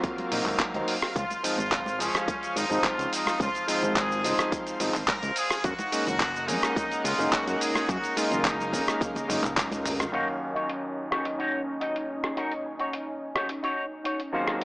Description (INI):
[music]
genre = nu-disco, nu disco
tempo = 107 BPM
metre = 4/4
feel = straight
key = Eb dorian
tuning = A4 = 440 Hz
[part]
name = warm electric grand piano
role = accompaniment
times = 0.0-14.6 s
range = Eb2 to F5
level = -31 LUFS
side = equal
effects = vintage 12-bit sampler grit, low-pass filter
[part]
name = lush unison pad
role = sustained chords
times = 0.0-14.6 s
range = Eb3 to Gb5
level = -34 LUFS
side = equal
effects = chorus, sidechain pumping
[part]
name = dusty soul sampler-style drum kit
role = drums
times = 0.0-14.6 s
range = cabasa, handclaps, hi-hat, rim click, toms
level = -29 LUFS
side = equal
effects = low-pass filter on hats, low-pass filter on snare, low-pass filter on perc, low-pass filter on toms, low-pass filter on room
[part]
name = electronic kick drum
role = drums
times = 0.0-9.7 s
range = none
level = -33 LUFS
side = equal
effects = overdrive
[part]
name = congas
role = percussion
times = 0.2-9.8 s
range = none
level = -39 LUFS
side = equal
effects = none
[part]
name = fat analog bass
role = bass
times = 0.3-10.1 s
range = Eb1 to Gb2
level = -33 LUFS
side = equal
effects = none
[part]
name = muted trumpet section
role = melody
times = 1.2-9.0 s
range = Db4 to Bb4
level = -30 LUFS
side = equal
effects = analog delay
[part]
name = electric guitar with an envelope filter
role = riff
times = 10.1-14.6 s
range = Eb3 to Eb5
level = -30 LUFS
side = left 1 dB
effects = analog chorus, low-pass filter
[sound]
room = light reverb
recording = dry, gritty hardware recording, small speaker sound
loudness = -25 LUFS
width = side -24 dB against mid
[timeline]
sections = 0.0-10.1 A section; 10.1-14.6 B section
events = drum fill 9.0-10.1; filter sweep on analog synth pad 10.1-14.6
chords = 0.0 Ab13 (rootless); 1.2 Dbmaj7; 5.6 Gb6; 10.1 Ebm7